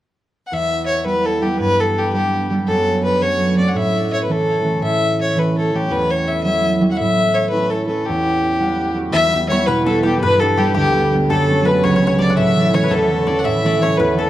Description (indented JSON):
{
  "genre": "celtic folk, Celtic jig",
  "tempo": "112 BPM (dotted quarters)",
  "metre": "6/8",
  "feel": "straight",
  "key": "E dorian",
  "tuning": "A4 = 438 Hz",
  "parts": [
    { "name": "rich fiddle", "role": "melody", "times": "0.5-14.3 s", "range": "G4 to F#5", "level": "-18 LUFS", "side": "left 2 dB", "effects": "tape echo" },
    { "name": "concert harp", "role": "accompaniment", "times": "0.5-14.3 s", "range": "C#2 to F#5", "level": "-18 LUFS", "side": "right 2 dB", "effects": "none" },
    { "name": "koto", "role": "second line", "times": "9.1-14.3 s", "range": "G4 to F#5", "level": "-22 LUFS", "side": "left 4 dB", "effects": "none" }
  ],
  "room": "light reverb",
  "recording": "dry, close 1970s-style studio recording",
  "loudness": "-14 LUFS",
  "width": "side -13 dB against mid",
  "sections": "0.5-9.1 A section; 9.1-14.3 A section",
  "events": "none",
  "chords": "0.0 N.C.; 0.5 Em; 1.6 G; 2.7 F#m; 3.8 A; 5.9 Emadd9; 7.0 A; 8.1 Emadd9; 9.1 Em; 10.2 G; 11.3 F#m; 12.4 A"
}